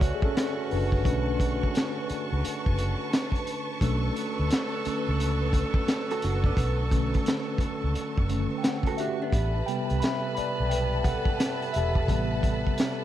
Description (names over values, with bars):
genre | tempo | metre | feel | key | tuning
R&B, neo-soul | 87 BPM | 4/4 | swing 64% on 16ths | B minor | A4 = 441 Hz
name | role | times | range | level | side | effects
mellow tine electric piano | accompaniment | 0.0-13.0 s | C3 to B5 | -30 LUFS | left 1 dB | medium stereo tremolo
warm studio string section | sustained chords | 0.0-13.0 s | A4 to C#6 | -36 LUFS | right 1 dB | none
clear horn section | stabs | 0.0-13.0 s | F#3 to B4 | -35 LUFS | right 2 dB | none
vintage muted fingered electric bass | bass | 0.0-12.6 s | E1 to D2 | -28 LUFS | equal | none
crunchy breakbeat drum kit | drums | 0.0-13.0 s | hi-hat, kick drum, snare drum | -27 LUFS | equal | none
vintage hollow-body jazz guitar | second line | 6.1-9.5 s | B3 to A4 | -33 LUFS | right 6 dB | none
room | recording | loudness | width
small room reverb | lossy compression artefacts | -24 LUFS | side -12 dB against mid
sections
0.0-13.0 A section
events
tine electric piano solo 0.0-13.0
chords
0.0 Bm9; 9.3 Am9